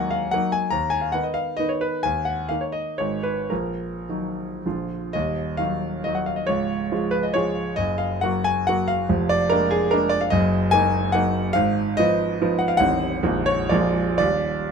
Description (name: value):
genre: classical, romantic triple-time dance for piano with dotted rhythms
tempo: 100-157 BPM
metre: 3/4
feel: rubato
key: Eb minor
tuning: A4 = 440 Hz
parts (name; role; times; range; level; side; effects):
- clear concert grand piano; solo; 0.0-14.7 s; A0 to Bb5; -20 LUFS; equal; none
room: light reverb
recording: minimal, uncompressed stereo recording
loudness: -20 LUFS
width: side -6 dB against mid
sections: 0.0-5.1 A section; 5.1-14.7 B section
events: none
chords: 0.0 Ebm; 0.7 Bmaj7#11/D#; 2.0 Eb5; 3.0 Abm; 3.5 Ebm/Bb; 4.7 Bb; 5.1 Ebm; 6.5 Db; 7.8 Gb; 9.1 Bb7/F; 10.3 Ebm/Gb; 11.6 Fm7b5/Ab; 12.8 Adim7; 13.2 Ebm/Bb; 13.7 Bb7; 14.2 N.C.